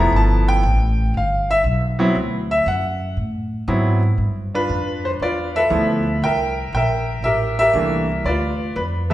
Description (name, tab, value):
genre	jazz piano trio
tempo	118 BPM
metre	4/4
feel	swing 69% on 8ths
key	G mixolydian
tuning	A4 = 440 Hz
part	bright baby grand piano	melody	0.0-9.1 s	E3 to Bb5	-19 LUFS	equal	none
part	upright bass	bass	0.0-9.1 s	F1 to A2	-21 LUFS	equal	none
room	wet recital hall reverb, RT60 1.5 s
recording	recorded in a church or concert hall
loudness	-17 LUFS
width	side -14 dB against mid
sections	0.0-4.2 A section; 4.2-9.1 B section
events	grand piano solo 0.0-4.2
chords	0.1 G13; 2.2 Dadd9; 4.2 G13; 6.2 C13; 8.2 G7 (rootless)